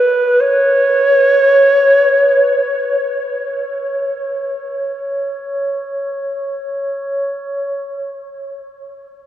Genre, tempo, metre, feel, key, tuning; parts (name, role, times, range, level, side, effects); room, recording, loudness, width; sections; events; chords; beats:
world meditative, free-time meditation music; free time; A4 = 441 Hz
mellow Native American-style cedar flute; melody; 0.0-3.0 s; B4 to C#5; -12 LUFS; right 1 dB; diffuse ambient delay
glass harmonica; texture; 0.0-7.8 s; B4 to C#5; -22 LUFS; left 1 dB
wet huge ambient reverb, RT60 8.4 s; worn, warbling old tape, cassette tape, warbly pitch drift; -13 LUFS; side -12 dB against mid
0.0-3.2 A section; 3.2-7.3 B section
free time